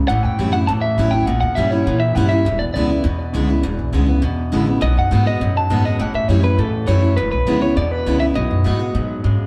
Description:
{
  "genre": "rockabilly",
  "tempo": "203 BPM",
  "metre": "4/4",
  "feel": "straight",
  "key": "unclear",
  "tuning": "A4 = 440 Hz",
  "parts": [
    { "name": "picked steel-string acoustic guitar", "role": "accompaniment", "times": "0.0-9.5 s", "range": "E2 to F#4", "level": "-23 LUFS", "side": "equal", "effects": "none" },
    { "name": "electric guitar through a small old amp", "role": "riff", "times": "0.0-9.5 s", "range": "E2 to G#3", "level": "-27 LUFS", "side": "equal", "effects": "none" },
    { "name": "upright bass", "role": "bass", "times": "0.0-9.5 s", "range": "E1 to B2", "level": "-21 LUFS", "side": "equal", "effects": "none" },
    { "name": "electric guitar through a small old amp", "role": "melody", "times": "0.1-9.2 s", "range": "A4 to A5", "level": "-24 LUFS", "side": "equal", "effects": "analog delay" }
  ],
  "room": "wet stone room reverb, RT60 1.3 s",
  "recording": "band playing live in one room",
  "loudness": "-18 LUFS",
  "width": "mono",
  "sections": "0.0-9.5 A section",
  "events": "none",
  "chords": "0.1 A7; 1.3 A#dim7; 2.5 E7; 4.8 B7; 6.0 A7; 7.2 E7; 8.4 B7"
}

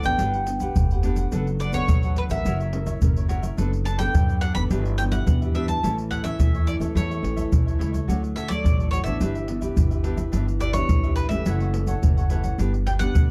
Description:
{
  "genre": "samba and choro",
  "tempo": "107 BPM",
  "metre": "4/4",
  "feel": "straight",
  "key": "D major",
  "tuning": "A4 = 439 Hz",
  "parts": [
    { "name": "bowl-back mandolin", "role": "melody", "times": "0.0-13.3 s", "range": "B4 to B5", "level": "-31 LUFS", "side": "equal", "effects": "plate reverb" },
    { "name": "cavaquinho", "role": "accompaniment", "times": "0.0-13.3 s", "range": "D4 to F#5", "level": "-37 LUFS", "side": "equal", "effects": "none" },
    { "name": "nylon-string guitar", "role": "accompaniment", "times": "0.0-13.3 s", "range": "F#2 to Bb4", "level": "-32 LUFS", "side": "equal", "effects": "none" },
    { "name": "upright bass", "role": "bass", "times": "0.0-13.3 s", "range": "F1 to F#2", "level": "-28 LUFS", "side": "equal", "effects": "none" },
    { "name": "tube shaker, surdo and pandeiro", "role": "percussion", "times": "0.0-13.3 s", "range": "none", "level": "-25 LUFS", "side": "equal", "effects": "none" }
  ],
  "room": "light reverb",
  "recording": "dark, warm production",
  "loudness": "-23 LUFS",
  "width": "mono",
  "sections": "0.0-13.3 A section",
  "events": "none",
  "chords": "0.2 Gmaj7; 1.3 D6/F#; 2.5 F#7; 3.6 Bm7/F#; 4.7 Em7/G; 5.8 A; 8.1 Dmaj7; 9.2 G6; 10.3 Em7/G; 11.5 F#m7; 12.6 G"
}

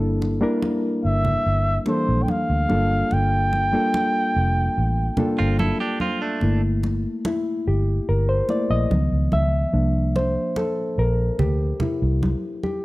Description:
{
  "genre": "lush 1970s-style soul",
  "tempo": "72 BPM",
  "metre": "4/4",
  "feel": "straight",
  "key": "G dorian",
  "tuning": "A4 = 441 Hz",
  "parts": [
    { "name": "reed electric piano", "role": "accompaniment", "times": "0.0-12.8 s", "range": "D#3 to E5", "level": "-23 LUFS", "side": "left 1 dB", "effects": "none" },
    { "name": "vintage muted fingered electric bass", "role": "bass", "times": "0.0-12.3 s", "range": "F1 to D2", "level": "-21 LUFS", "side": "equal", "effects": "none" },
    { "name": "congas", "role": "percussion", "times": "0.2-12.8 s", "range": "none", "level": "-28 LUFS", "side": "right 2 dB", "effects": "none" },
    { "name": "breathy flugelhorn", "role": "melody", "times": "1.0-5.6 s", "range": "C5 to G5", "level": "-23 LUFS", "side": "equal", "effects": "none" },
    { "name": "direct-recorded clean electric guitar", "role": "riff", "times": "5.4-6.6 s", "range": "A3 to A4", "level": "-26 LUFS", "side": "right 4 dB", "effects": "none" }
  ],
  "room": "light reverb, small room ambience",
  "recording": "none",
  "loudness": "-19 LUFS",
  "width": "side -19 dB against mid",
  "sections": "0.0-6.4 A section; 6.4-12.8 B section",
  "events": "reed electric piano solo 6.4-12.8",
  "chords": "0.0 Gm69; 2.7 Gm9; 6.4 Gm69; 8.9 C#9; 9.7 C7sus4"
}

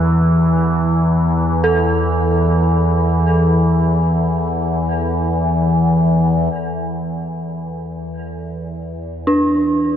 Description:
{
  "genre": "dark ambient drone",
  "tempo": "free time",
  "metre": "none",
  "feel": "none",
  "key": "unclear",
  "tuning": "A4 = 440 Hz",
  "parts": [
    { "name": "dark analog pad", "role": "sustained chords", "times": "0.0-6.5 s", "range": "none", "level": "barely audible", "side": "none", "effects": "none" },
    { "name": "dark detuned synth bell", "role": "arpeggios", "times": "0.0-10.0 s", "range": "D4 to A4", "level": "-21 LUFS", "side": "right 1 dB", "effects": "chorus, diffuse ambient delay" },
    { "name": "overtone-sweeping drone", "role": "drone", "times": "0.0-10.0 s", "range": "E2 to E3", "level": "-15 LUFS", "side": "equal", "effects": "chorus, built-in reverb" }
  ],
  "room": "wet huge ambient reverb, RT60 8.1 s",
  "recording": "none",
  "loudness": "-14 LUFS",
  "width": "side -9 dB against mid",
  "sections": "0.0-6.5 A section; 6.5-10.0 B section",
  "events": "none",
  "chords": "0.0 E5; 6.5 E7sus4"
}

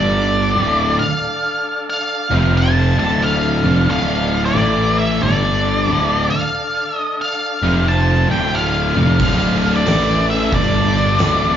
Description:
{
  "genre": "stoner and doom metal",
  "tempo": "90 BPM",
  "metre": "4/4",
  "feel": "swing 63% on 8ths",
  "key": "D minor",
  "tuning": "A4 = 440 Hz",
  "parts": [
    { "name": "octave-fuzz lead guitar", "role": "melody", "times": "0.0-11.6 s", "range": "D5 to A5", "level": "-19 LUFS", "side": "equal", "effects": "distortion, slapback echo, analog delay" },
    { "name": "bright tonewheel organ", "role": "sustained chords", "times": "0.0-11.6 s", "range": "G3 to G5", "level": "-27 LUFS", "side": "equal", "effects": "slow rotary speaker" },
    { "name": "fuzz guitar", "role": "riff", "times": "0.0-11.6 s", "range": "D2 to A3", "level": "-22 LUFS", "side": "left 8 dB", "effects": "distortion, slapback echo" },
    { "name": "high-gain distorted guitar", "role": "riff", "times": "0.0-11.6 s", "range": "D2 to A3", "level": "-24 LUFS", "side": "equal", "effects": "distortion, slapback echo" },
    { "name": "thick fuzz guitar", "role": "riff", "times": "0.0-11.6 s", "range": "D2 to A3", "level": "-23 LUFS", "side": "right 8 dB", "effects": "distortion, slapback echo" },
    { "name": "fuzz picked electric bass", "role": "bass", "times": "0.0-11.6 s", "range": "D1 to A1", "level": "-19 LUFS", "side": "equal", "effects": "overdrive, tube saturation" },
    { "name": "oversized low-tuned drum kit", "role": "drums", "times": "9.2-11.4 s", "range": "crash cymbal, kick drum, snare drum", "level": "-21 LUFS", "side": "equal", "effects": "none" }
  ],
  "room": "little or no reverb",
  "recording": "live gig heard through the venue's PA, club reverb, nothing above 7.5 kHz",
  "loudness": "-14 LUFS",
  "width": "side -9 dB against mid",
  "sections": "0.0-11.6 A section",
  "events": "none",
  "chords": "0.0 G5; 0.6 Dm; 2.2 F5; 2.9 Dm; 4.6 A5; 5.2 G5; 5.9 Dm; 7.5 F5; 8.2 Dm; 9.9 A5; 10.5 G5"
}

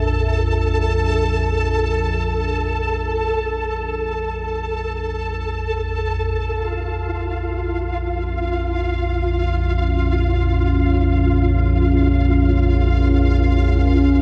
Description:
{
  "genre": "dark ambient drone",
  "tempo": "free time",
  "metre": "none",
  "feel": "none",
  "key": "unclear",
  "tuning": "A4 = 440 Hz",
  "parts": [
    { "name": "deep dark ambient pad", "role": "sustained chords", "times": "0.0-14.2 s", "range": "Db4 to F5", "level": "-27 LUFS", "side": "equal", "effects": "chorus, built-in reverb" },
    { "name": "deep rumbling drone", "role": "drone", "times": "0.0-14.2 s", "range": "Bb1 to F2", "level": "-22 LUFS", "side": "equal", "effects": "built-in reverb, lush chorus" },
    { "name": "flickering grainy texture", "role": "texture", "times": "0.0-14.2 s", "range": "F4 to A4", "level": "-26 LUFS", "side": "equal", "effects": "built-in reverb" }
  ],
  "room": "wet cathedral reverb, RT60 5.5 s",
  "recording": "in a vast, echoing space",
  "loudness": "-20 LUFS",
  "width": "mono",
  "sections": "0.0-6.4 A section; 6.4-14.2 B section",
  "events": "none",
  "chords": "0.0 Dmadd9; 6.4 Bbm7"
}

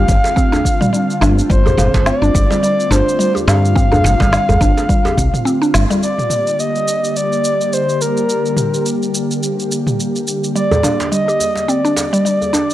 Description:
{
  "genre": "organic downtempo",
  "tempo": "106 BPM",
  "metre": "4/4",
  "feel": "swing 57% on 16ths",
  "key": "G minor",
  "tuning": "A4 = 441 Hz",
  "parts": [
    { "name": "breathy flute-like synth lead", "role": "melody", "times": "0.0-12.7 s", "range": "Bb4 to F5", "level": "-18 LUFS", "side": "equal", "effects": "chorus, analog delay" },
    { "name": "airy breathy pad", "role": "sustained chords", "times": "0.0-12.7 s", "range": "D3 to G4", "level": "-22 LUFS", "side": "left 1 dB", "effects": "chorus, sidechain pumping" },
    { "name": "mallet-like synth pluck", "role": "arpeggios", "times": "0.0-6.0, 10.6-12.7 s", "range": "G3 to G4", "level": "-18 LUFS", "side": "equal", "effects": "chorus, tape echo" },
    { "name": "woody fretless electric bass", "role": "bass", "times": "0.0-5.8 s", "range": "G1 to G2", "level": "-15 LUFS", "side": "equal", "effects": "sidechain pumping" },
    { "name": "electronic kick drum", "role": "drums", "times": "0.1-5.3 s", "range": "none", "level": "-16 LUFS", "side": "equal", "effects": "none" },
    { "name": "organic electronic drum kit", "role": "drums", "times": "0.1-12.7 s", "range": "shaker, snare drum, toms", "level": "-21 LUFS", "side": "equal", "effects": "none" },
    { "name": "djembe", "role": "percussion", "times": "0.2-6.0, 10.7-12.7 s", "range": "none", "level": "-21 LUFS", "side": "right 2 dB", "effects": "none" }
  ],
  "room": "light reverb",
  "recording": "dry, gritty hardware recording",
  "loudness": "-13 LUFS",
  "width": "side -14 dB against mid",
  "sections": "0.0-6.0 A section; 6.0-12.7 B section",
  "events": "kick drops out 5.5-6.0; band accent 5.7",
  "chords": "0.0 Dm7/G; 6.0 Gm"
}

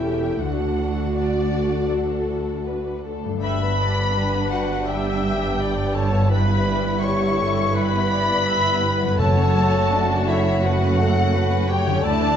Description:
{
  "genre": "cinematic, emotional film score for orchestra",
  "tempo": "78-86 BPM",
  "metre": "4/4",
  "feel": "rubato",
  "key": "unclear",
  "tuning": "A4 = 440 Hz",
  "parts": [
    { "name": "clear symphonic violin section", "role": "melody", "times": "0.0-12.4 s", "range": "E5 to C#6", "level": "-27 LUFS", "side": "left 2 dB", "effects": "none" },
    { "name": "warm symphonic violin section", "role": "second line", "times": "0.0-12.4 s", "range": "G3 to G5", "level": "-29 LUFS", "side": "left 3 dB", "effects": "none" },
    { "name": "rich studio viola section", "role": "accompaniment", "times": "0.0-12.4 s", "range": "C#4 to E5", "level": "-29 LUFS", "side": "equal", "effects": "none" },
    { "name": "warm French horn section", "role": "sustained chords", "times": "0.0-12.4 s", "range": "E3 to C#5", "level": "-29 LUFS", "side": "left 3 dB", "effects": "none" },
    { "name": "concert harp", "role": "arpeggios", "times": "0.0-12.4 s", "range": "F#2 to D5", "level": "-29 LUFS", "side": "left 7 dB", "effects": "none" },
    { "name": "rich symphonic cello section", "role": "bass", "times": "0.0-12.4 s", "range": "D2 to G2", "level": "-26 LUFS", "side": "right 3 dB", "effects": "none" },
    { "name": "rich symphonic double bass section", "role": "bass", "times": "0.0-12.4 s", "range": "E1 to D2", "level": "-25 LUFS", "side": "right 3 dB", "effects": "none" },
    { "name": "silver concert flute", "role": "second line", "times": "3.4-12.4 s", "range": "E5 to C#6", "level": "-28 LUFS", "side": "equal", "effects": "none" },
    { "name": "warm clarinet", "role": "second line", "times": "3.4-12.4 s", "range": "E4 to C#5", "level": "-28 LUFS", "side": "left 1 dB", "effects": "none" },
    { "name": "timpani", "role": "percussion", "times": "9.2-10.2 s", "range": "F#2", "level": "-24 LUFS", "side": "right 1 dB", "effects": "none" }
  ],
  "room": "moderate scoring stage reverb, RT60 1.9 s",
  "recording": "dark, warm production, nothing above 7.9 kHz",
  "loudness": "-18 LUFS",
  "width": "side -8 dB against mid",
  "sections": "0.0-3.4 A section; 3.4-12.4 B section",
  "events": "none",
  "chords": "0.4 Dadd9; 3.4 G; 6.3 Em/G; 9.2 F#m"
}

